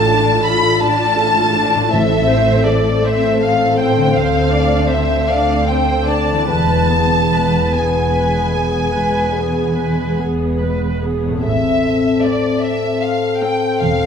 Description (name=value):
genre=classical, slow romantic movement for symphony orchestra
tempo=47-55 BPM (dotted quarters)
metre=12/8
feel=rubato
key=A minor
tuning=A4 = 440 Hz
part: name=warm symphonic violin section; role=melody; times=0.0-14.1 s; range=D5 to B5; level=-20 LUFS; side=left 2 dB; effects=none
part: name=warm chamber violin section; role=second line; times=0.0-14.1 s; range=D5 to B5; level=-22 LUFS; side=equal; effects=none
part: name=warm studio viola section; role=accompaniment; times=0.0-13.7 s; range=G#3 to D5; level=-22 LUFS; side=equal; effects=none
part: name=warm French horn section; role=sustained chords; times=0.0-14.1 s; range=B3 to B4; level=-20 LUFS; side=left 3 dB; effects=none
part: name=concert harp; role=arpeggios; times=0.0-14.1 s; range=A2 to C5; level=-22 LUFS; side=left 5 dB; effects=none
part: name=rich chamber double bass section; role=bass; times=0.0-14.1 s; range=E1 to D2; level=-22 LUFS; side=right 4 dB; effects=none
part: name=warm symphonic cello section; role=bass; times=0.0-14.1 s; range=D2 to A2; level=-22 LUFS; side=right 3 dB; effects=none
part: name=timpani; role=percussion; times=1.9-3.0 s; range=A2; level=-24 LUFS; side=equal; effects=none
room=wet scoring stage reverb, RT60 1.9 s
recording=minimal, uncompressed stereo recording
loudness=-13 LUFS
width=side -7 dB against mid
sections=0.0-14.1 A section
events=none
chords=0.0 Dm/A; 1.9 Am; 4.2 Dm7; 6.5 E; 11.4 Am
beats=0.82 | 1.93 3.04 4.15 5.29 | 6.50 7.75 8.96 10.22 | 11.44 12.63 13.81